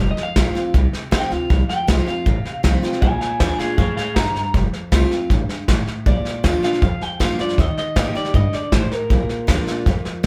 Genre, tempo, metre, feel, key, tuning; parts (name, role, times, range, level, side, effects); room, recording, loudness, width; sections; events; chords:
rockabilly; 158 BPM; 4/4; straight; Bb major; A4 = 440 Hz
electric guitar through a small old amp; melody; 0.0-10.3 s; Ab4 to Bb5; -28 LUFS; equal
picked steel-string acoustic guitar; accompaniment; 0.0-10.3 s; F2 to G4; -27 LUFS; equal
upright bass; bass; 0.0-10.1 s; F1 to Bb2; -23 LUFS; equal
soft brush drum kit; drums; 0.2-10.3 s; hi-hat, kick drum, snare drum; -23 LUFS; equal
moderate studio reverb, RT60 0.8 s; band playing live in one room; -19 LUFS; mono
0.0-6.1 A section; 6.1-10.3 B section
clean electric guitar solo 0.0-6.1
0.0 F; 3.0 Bb; 4.5 F; 6.1 Bb; 7.6 Eb; 9.1 Bb